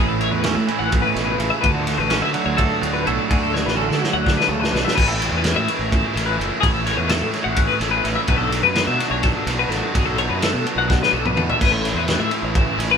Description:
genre	math rock and midwest emo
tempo	253 BPM (eighths)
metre	7/8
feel	straight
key	A major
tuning	A4 = 440 Hz
part	twangy electric guitar	accompaniment	0.0-5.0 s	A2 to A4	-25 LUFS	right 8 dB	none
part	twelve-string electric guitar	arpeggios	0.0-13.0 s	G#4 to F#5	-22 LUFS	left 6 dB	tremolo
part	crunchy overdriven guitar	riff	0.0-13.0 s	A2 to F#4	-24 LUFS	right 2 dB	none
part	fuzz fingered electric bass	bass	0.0-13.0 s	F#1 to D3	-25 LUFS	equal	overdrive
part	loose indie drum kit	drums	0.2-12.9 s	crash cymbal, kick drum, ride cymbal, snare drum, toms	-22 LUFS	equal	none
room	light reverb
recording	band playing live in one room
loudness	-17 LUFS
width	side -6 dB against mid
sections	0.0-5.0 A section; 5.0-13.0 B section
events	drum fill 3.5-5.0, 10.9-11.6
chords	0.0 A69; 1.6 D69; 5.0 Aadd9; 8.3 Bm7; 11.6 Aadd9

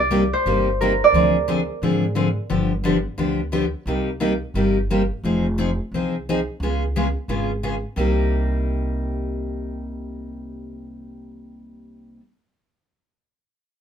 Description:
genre	acoustic string swing (jazz manouche)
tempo	176 BPM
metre	4/4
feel	swing 62% on 8ths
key	C minor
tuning	A4 = 439 Hz
part	Celtic harp	melody	0.0-2.9 s	Bb4 to D5	-19 LUFS	right 4 dB	none
part	upright bass	bass	0.0-12.2 s	F1 to Ab2	-25 LUFS	equal	none
part	picked steel-string acoustic guitar	accompaniment	0.1-12.2 s	C3 to Ab4	-22 LUFS	left 2 dB	none
room	light reverb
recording	minimal, uncompressed stereo recording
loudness	-19 LUFS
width	side -8 dB against mid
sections	0.0-5.2 A section; 5.2-8.0 B section; 8.0-10.7 C section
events	none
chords	0.0 Cm7; 1.1 Dm7b5; 2.5 G7; 3.9 Cm7; 5.2 Fm7; 6.6 Db7; 8.0 Cm7

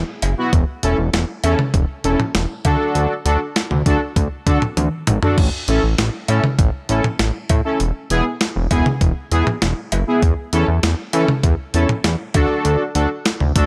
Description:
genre	synth-pop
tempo	99 BPM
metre	4/4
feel	straight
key	A major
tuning	A4 = 440 Hz
part	fat analog bass	bass	0.0-13.7 s	E1 to E3	-21 LUFS	equal	none
part	analog synth brass	accompaniment	0.2-13.7 s	B3 to B4	-23 LUFS	equal	chorus
part	clean 12-bit digital drum machine	drums	0.2-13.7 s	cowbell, crash cymbal, hi-hat, kick drum, snare drum, toms	-21 LUFS	equal	none
room	light reverb, digital ambience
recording	none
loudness	-18 LUFS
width	mono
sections	0.0-13.7 A section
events	drum fill 4.8-5.4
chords	0.0 E; 0.5 A/E; 2.6 D; 5.4 A; 7.8 E; 10.2 A/E; 12.3 D

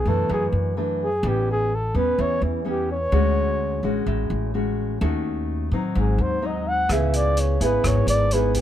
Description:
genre	bossa nova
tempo	127 BPM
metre	4/4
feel	straight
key	A major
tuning	A4 = 441 Hz
part	breathy flugelhorn	melody	0.0-8.6 s	E4 to F#5	-24 LUFS	equal	none
part	nylon-string guitar	accompaniment	0.0-8.6 s	F#2 to G#4	-25 LUFS	left 1 dB	none
part	upright bass	bass	0.0-8.6 s	G#1 to A2	-24 LUFS	equal	none
part	open jazz drum kit	drums	6.9-8.6 s	hi-hat, kick drum, rim click	-29 LUFS	equal	none
room	little or no reverb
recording	close, detailed microphones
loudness	-20 LUFS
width	side -11 dB against mid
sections	0.0-8.6 A section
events	flugelhorn solo 0.0-8.6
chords	0.0 Bm7; 1.2 A9; 3.1 Dmaj7#11; 5.0 D#m7b5; 6.0 G#7; 6.9 C#m7

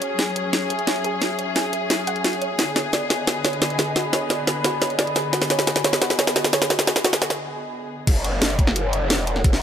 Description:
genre	dark technical drum and bass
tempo	175 BPM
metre	4/4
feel	straight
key	unclear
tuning	A4 = 441 Hz
part	muted studio string section	sustained chords	0.0-8.0 s	D3 to G#4	-27 LUFS	left 2 dB	sidechain pumping
part	soft round pluck	arpeggios	0.0-7.3 s	F#4 to F#5	-28 LUFS	right 3 dB	lush chorus, sidechain pumping, ping-pong delay
part	drum and bass drum kit	drums	0.0-9.6 s	crash cymbal, hi-hat, snare drum	-21 LUFS	equal	none
part	warbly tape-like pad	texture	0.0-9.6 s	G#4 to B5	-29 LUFS	left 1 dB	chorus, built-in reverb, sidechain pumping
part	growl bass	bass	8.1-9.6 s	F#1	-23 LUFS	equal	chorus, overdrive, sidechain pumping
part	breakbeat sampler-style drum kit	drums	8.1-9.5 s	hi-hat, snare drum	-34 LUFS	left 1 dB	none
part	electronic kick drum	drums	8.1-9.5 s	none	-18 LUFS	equal	none
room	light reverb, digital ambience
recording	none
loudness	-19 LUFS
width	side -9 dB against mid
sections	0.0-8.1 A section; 8.1-9.6 B section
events	build-up 0.0-8.1; drum fill 0.0-7.4; filter sweep on synth pluck 0.0-8.1; break 7.4-8.1; drop 8.1-9.6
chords	0.0 F#sus2; 2.6 G#dim; 8.1 F#5

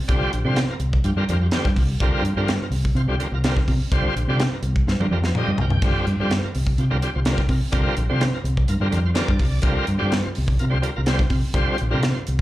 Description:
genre	electric jazz fusion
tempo	126 BPM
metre	4/4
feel	swing 53% on 16ths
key	unclear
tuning	A4 = 440 Hz
part	fingered electric bass	bass	0.0-12.4 s	Bb1 to C3	-22 LUFS	equal	none
part	bright tonewheel organ	accompaniment	0.1-12.2 s	D3 to G5	-26 LUFS	equal	overdrive, fast rotary speaker, plate reverb, slapback echo
part	crisp fusion drum kit	drums	0.1-12.4 s	crash cymbal, hi-hat, kick drum, snare drum, toms	-23 LUFS	equal	none
room	light reverb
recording	live gig heard through the venue's PA, club reverb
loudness	-19 LUFS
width	side -15 dB against mid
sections	0.0-12.4 A section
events	drum fill 4.9-5.8; tonewheel organ fill 5.1-5.8, 8.9-9.6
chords	0.0 C9sus4

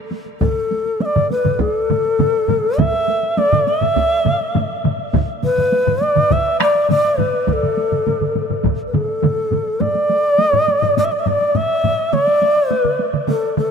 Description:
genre	japanese traditional, taiko drum ensemble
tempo	103 BPM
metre	4/4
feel	straight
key	unclear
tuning	A4 = 443 Hz
part	taiko ensemble	percussion	0.1-13.7 s	none	-25 LUFS	right 1 dB	none
part	reedy long shakuhachi	melody	0.4-13.7 s	A4 to E5	-16 LUFS	equal	none
part	taiko ensemble	percussion	0.4-12.0 s	none	-23 LUFS	left 2 dB	none
part	taiko ensemble	percussion	0.4-13.7 s	none	-22 LUFS	right 2 dB	none
part	taiko ensemble	percussion	0.4-8.8 s	none	-23 LUFS	right 2 dB	none
room	moderate huge ambient reverb, RT60 6.3 s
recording	minimal, uncompressed stereo recording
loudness	-15 LUFS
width	side -6 dB against mid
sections	0.0-9.8 A section; 9.8-13.7 B section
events	speeding up 0.0-13.7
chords	none

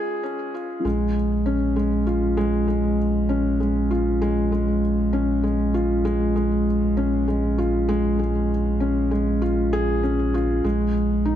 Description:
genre	piano and strings electronica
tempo	98 BPM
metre	4/4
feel	straight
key	Bb minor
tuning	A4 = 440 Hz
part	felt-muted upright piano	riff	0.0-11.4 s	Ab3 to Ab4	-21 LUFS	left 1 dB	ping-pong delay
part	warm sub bass	bass	0.8-11.4 s	Bb1	-24 LUFS	right 1 dB	none
room	moderate echo chamber reverb, RT60 1.7 s, studio reverb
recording	high-pass filter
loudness	-20 LUFS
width	side -10 dB against mid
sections	0.8-11.4 A section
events	drop 0.8-11.4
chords	0.0 Absus4; 0.8 Bbm7; 10.6 Fm7/Bb (rootless)

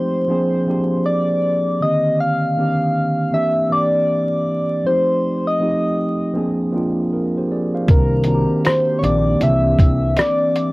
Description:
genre	lo-fi hip hop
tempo	79 BPM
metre	4/4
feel	swing 61% on 16ths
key	C minor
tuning	A4 = 440 Hz
part	soft struck synth lead	melody	0.0-10.7 s	Bb4 to F5	-19 LUFS	left 1 dB	chorus, low-pass filter, cassette tape
part	mellow tine electric piano	accompaniment	0.0-10.7 s	D3 to F5	-19 LUFS	right 1 dB	cassette tape, low-pass filter
part	warbly tape-like pad	sustained chords	8.6-10.7 s	Eb3 to G4	-30 LUFS	equal	none
part	upright bass	bass	7.9-10.1 s	Bb1 to C2	-19 LUFS	equal	none
part	lo-fi sampler-style drum kit	drums	7.9-10.7 s	hi-hat, kick drum, rim click	-14 LUFS	equal	vintage 12-bit sampler grit, cassette tape
room	moderate booth ambience, RT60 0.2 s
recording	home recording on cassette, vinyl crackle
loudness	-15 LUFS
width	side -21 dB against mid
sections	0.0-7.9 A section; 7.9-10.7 B section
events	none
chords	0.3 Bb7; 1.8 Cm7; 3.3 C7; 4.8 F7; 6.4 Bb7; 7.9 Cm7; 9.4 C7

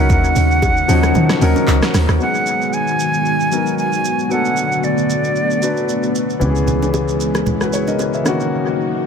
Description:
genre	amapiano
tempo	114 BPM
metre	4/4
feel	swing 55% on 16ths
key	G# minor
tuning	A4 = 440 Hz
part	silver concert flute	melody	0.0-6.2 s	D5 to G#5	-20 LUFS	right 1 dB	dub echo
part	warm baby grand piano	accompaniment	0.0-9.1 s	D#3 to E5	-21 LUFS	left 4 dB	dub echo
part	string machine, cellos	sustained chords	0.0-9.1 s	C#3 to F#5	-20 LUFS	equal	ensemble chorus
part	deep log drum bass	bass	0.0-2.2 s	C#2 to D#3	-15 LUFS	right 1 dB	none
part	deep house drum kit	drums	0.1-8.5 s	handclaps, hi-hat, kick drum, rim click, shaker, snare drum	-23 LUFS	right 1 dB	dub echo
part	congas and bongos	percussion	0.1-2.1, 6.4-8.4 s	none	-24 LUFS	right 4 dB	none
part	fingered electric bass	bass	6.4-8.2 s	C#2	-21 LUFS	equal	none
room	light reverb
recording	echo-heavy mix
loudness	-14 LUFS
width	side -6 dB against mid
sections	0.0-2.2 A section; 2.2-9.1 B section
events	drop 0.0-2.2; kick muted 1.2-2.2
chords	0.0 D#m7; 2.2 G#m7; 4.3 Bm7; 6.4 C#m7; 8.3 D#m7

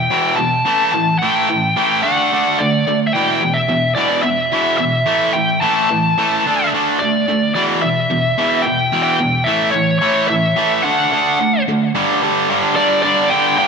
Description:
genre	rock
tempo	109 BPM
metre	4/4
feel	straight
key	E minor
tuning	A4 = 439 Hz
part	biting lead guitar	melody	0.0-13.7 s	C#5 to A5	-16 LUFS	left 1 dB	overdrive
part	overdriven electric guitar	riff	0.0-13.7 s	E2 to D4	-16 LUFS	right 1 dB	none
room	wet lush hall reverb, RT60 2.6 s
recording	bright 1980s-style digital production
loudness	-13 LUFS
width	side -5 dB against mid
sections	0.0-11.9 A section; 11.9-13.7 B section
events	none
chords	0.0 Em; 0.7 A5; 2.0 D; 3.1 E5; 5.1 A5; 6.4 D5; 7.5 E5; 9.5 A5; 10.8 D; 11.9 G5

